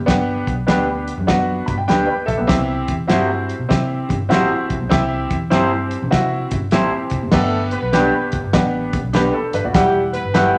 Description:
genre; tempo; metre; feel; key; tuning
uptempo 1960s-style soul; 99 BPM; 4/4; swing 65% on 8ths; G major; A4 = 441 Hz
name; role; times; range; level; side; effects
vintage muted fingered electric bass; bass; 0.0-10.5 s; Eb1 to C3; -28 LUFS; equal; none
clear upright piano; accompaniment; 0.1-10.6 s; G3 to B5; -23 LUFS; equal; none
warm soul drum kit; drums; 0.1-10.5 s; crash cymbal, hi-hat, kick drum, snare drum; -22 LUFS; equal; none
electric guitar through a small old amp; stabs; 0.7-10.5 s; D4 to F#5; -23 LUFS; equal; spring reverb
congas; percussion; 0.7-10.5 s; none; -33 LUFS; equal; none
warm horn section; second line; 7.3-10.6 s; G3 to B4; -24 LUFS; equal; none
room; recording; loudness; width
moderate large studio reverb, RT60 1.1 s; none; -18 LUFS; mono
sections
0.0-7.3 A section; 7.3-10.6 B section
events
upright piano fill 1.3-2.5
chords
0.0 G; 2.5 C; 7.3 G; 9.7 Emadd9

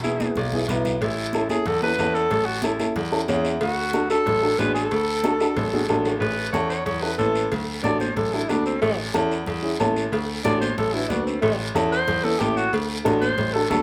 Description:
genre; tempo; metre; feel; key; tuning
latin, cumbia; 184 BPM; 4/4; straight; A major; A4 = 442 Hz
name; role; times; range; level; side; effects
warm alto saxophone; melody; 0.0-13.8 s; A3 to D5; -26 LUFS; equal; none
dark upright piano; accompaniment; 0.0-13.8 s; B3 to E5; -27 LUFS; equal; none
clear grand piano; bass; 0.0-13.8 s; E1 to E2; -29 LUFS; equal; none
congas; percussion; 0.0-13.8 s; none; -35 LUFS; equal; none
guiro; percussion; 0.0-13.8 s; none; -38 LUFS; equal; none
cowbell and timbales; percussion; 0.4-13.8 s; none; -35 LUFS; equal; none
room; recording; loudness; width
wet studio ambience, RT60 0.5 s; band playing live in one room; -23 LUFS; mono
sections
0.0-6.2 A section; 6.2-13.8 B section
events
drum fill 0.0-1.0, 5.6-6.2; upright piano fill 3.1-3.6; alto saxophone solo 6.2-13.8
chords
0.0 E; 1.0 A; 3.6 D; 6.2 A; 7.5 D; 8.8 A; 10.1 D; 11.4 A; 12.7 D

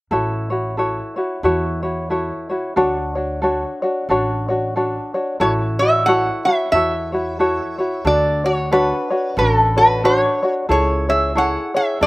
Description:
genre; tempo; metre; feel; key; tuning
Hawaiian; 91 BPM; 4/4; swing 59% on 8ths; A major; A4 = 440 Hz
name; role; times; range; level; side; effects
tenor ukulele; accompaniment; 0.1-12.1 s; D4 to C#5; -19 LUFS; left 1 dB; slapback echo
upright bass; bass; 0.1-12.1 s; A1 to E2; -24 LUFS; right 1 dB; none
lap resonator guitar; melody; 5.4-12.1 s; A4 to F#5; -17 LUFS; equal; none
room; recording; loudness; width
little or no reverb; recorded outdoors, with no room sound; -16 LUFS; side -21 dB against mid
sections
0.1-5.4 A section; 5.4-12.1 B section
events
none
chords
0.1 A6; 2.8 Dmaj7; 5.4 A6; 8.1 Dmaj7; 10.7 Amaj7/C#

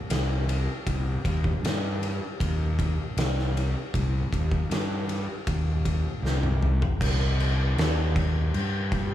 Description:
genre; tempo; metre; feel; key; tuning
stoner and doom metal; 78 BPM; 4/4; straight; C minor; A4 = 440 Hz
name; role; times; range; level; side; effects
fuzz fingered electric bass; bass; 0.1-9.1 s; C2 to G2; -26 LUFS; equal; overdrive
oversized low-tuned drum kit; drums; 0.1-9.1 s; crash cymbal, kick drum, ride cymbal, snare drum, toms; -27 LUFS; equal; none
room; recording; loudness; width
little or no reverb; small room ambience; -24 LUFS; side -12 dB against mid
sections
0.0-7.0 A section; 7.0-9.1 B section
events
drum fill 6.2-7.0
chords
none

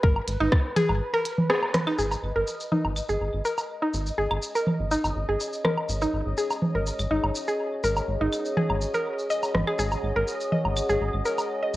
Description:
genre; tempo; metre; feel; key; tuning
minimal techno; 123 BPM; 4/4; straight; G# minor; A4 = 438 Hz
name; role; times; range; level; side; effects
mallet-like synth pluck; riff; 0.0-11.7 s; D#4 to D#5; -27 LUFS; equal; chorus, sidechain pumping, tape echo
rubbery square bass; bass; 0.0-11.8 s; G#1; -29 LUFS; equal; sidechain pumping
electronic kick drum; drums; 0.0-0.6 s; none; -20 LUFS; equal; none
bubbling stepped-filter texture; texture; 0.0-11.8 s; B4 to D#5; -36 LUFS; left 1 dB; chorus, built-in reverb, sidechain pumping
electronic woodblock, claves, congas and rim click; percussion; 0.2-11.5 s; none; -27 LUFS; right 1 dB; overdrive, tape echo
minimal click drum kit; drums; 0.3-11.8 s; hi-hat, rim click, shaker; -32 LUFS; equal; none
deep dark ambient pad; texture; 4.5-11.8 s; G#4 to F#5; -32 LUFS; equal; chorus, built-in reverb, sidechain pumping
room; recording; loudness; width
moderate spring reverb, RT60 1.8 s, digital ambience; home recording on cassette; -23 LUFS; side -16 dB against mid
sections
0.0-2.0 A section; 2.0-11.8 B section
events
band accent 1.5; filter sweep on synth arpeggio sound 2.0-11.8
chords
0.0 G#m

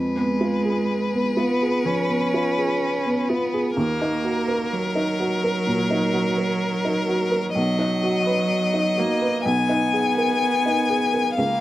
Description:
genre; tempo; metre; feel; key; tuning
neoclassical piano and strings; 63 BPM; 4/4; rubato; Eb minor; A4 = 441 Hz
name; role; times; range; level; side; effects
clear violin; melody; 0.0-11.6 s; Bb4 to Ab5; -24 LUFS; left 4 dB; none
rich cello; second line; 0.0-11.6 s; F#3 to Db4; -25 LUFS; right 3 dB; none
dark upright piano; accompaniment; 0.0-11.6 s; B1 to B4; -24 LUFS; right 1 dB; none
room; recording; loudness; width
little or no reverb; recorded outdoors, with no room sound; -20 LUFS; side -14 dB against mid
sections
0.0-11.6 A section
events
none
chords
0.0 Fdim; 3.8 Ebm; 7.6 B; 9.5 Abmadd9/Cb

